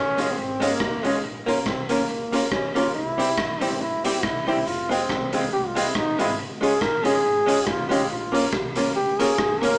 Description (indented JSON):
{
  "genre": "ska",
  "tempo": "140 BPM",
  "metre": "4/4",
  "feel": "swing 56% on 8ths",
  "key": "unclear",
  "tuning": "A4 = 440 Hz",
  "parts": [
    { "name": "warm trombone", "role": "melody", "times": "0.0-9.8 s", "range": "Ab3 to Bb4", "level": "-24 LUFS", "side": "equal", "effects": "none" },
    { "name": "upright bass", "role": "bass", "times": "0.0-9.8 s", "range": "F1 to Db2", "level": "-40 LUFS", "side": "equal", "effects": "none" },
    { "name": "archtop guitar, miked and amplified", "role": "accompaniment", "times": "0.2-9.7 s", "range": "G3 to F4", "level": "-25 LUFS", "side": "equal", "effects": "none" },
    { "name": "warm upright piano", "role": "stabs", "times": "0.2-9.8 s", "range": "C4 to Bb4", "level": "-29 LUFS", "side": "left 1 dB", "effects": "none" },
    { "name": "raw garage drum kit", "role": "drums", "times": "0.2-9.7 s", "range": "hi-hat, kick drum, rim click", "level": "-27 LUFS", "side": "equal", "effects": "none" }
  ],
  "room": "moderate stone room reverb, RT60 0.9 s",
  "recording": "band playing live in one room, small speaker sound",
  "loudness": "-20 LUFS",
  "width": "side -27 dB against mid",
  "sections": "0.0-9.8 A section",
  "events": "trombone solo 0.0-9.8",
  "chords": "0.0 Db; 1.2 Bbm; 2.9 C; 4.7 Fm; 6.4 Db; 8.1 Bbm",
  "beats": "0.37 0.80 | 1.23 1.66 2.09 2.52 | 2.95 3.38 3.81 4.24 | 4.67 5.09 5.52 5.95 | 6.38 6.81 7.24 7.67 | 8.10 8.53 8.96 9.39"
}